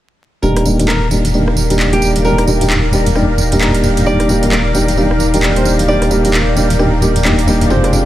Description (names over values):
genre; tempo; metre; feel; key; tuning
UK garage, two-step garage; 132 BPM; 4/4; swing 60% on 16ths; unclear; A4 = 440 Hz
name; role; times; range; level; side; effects
flamenco guitar; melody; 0.4-7.9 s; G4 to D5; -22 LUFS; equal; ping-pong delay
soft string machine; sustained chords; 0.8-8.1 s; D5 to C6; -23 LUFS; equal; phaser, ensemble chorus
warm grand piano; stabs; 0.4-8.0 s; G3 to G4; -16 LUFS; equal; low-pass filter, tape echo
deep soft wobble bass; bass; 0.4-8.1 s; Eb1 to F1; -15 LUFS; equal; chorus
garage drum kit; drums; 0.4-8.0 s; handclaps, hi-hat, rim click, tambourine; -20 LUFS; right 1 dB; overdrive
warbly tape-like pad; texture; 1.4-8.1 s; Ab3 to D5; -22 LUFS; equal; chorus, built-in reverb, phaser
room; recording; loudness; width
light reverb; vinyl crackle; -11 LUFS; side -13 dB against mid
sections
0.4-8.1 A section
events
filter sweep on grand piano 0.4-8.1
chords
0.4 Ebmaj7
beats
| 0.43 0.89 1.34 1.79 | 2.25 2.70 3.16 3.61 | 4.07 4.52 4.98 5.43 | 5.88 6.34 6.79 7.25 | 7.70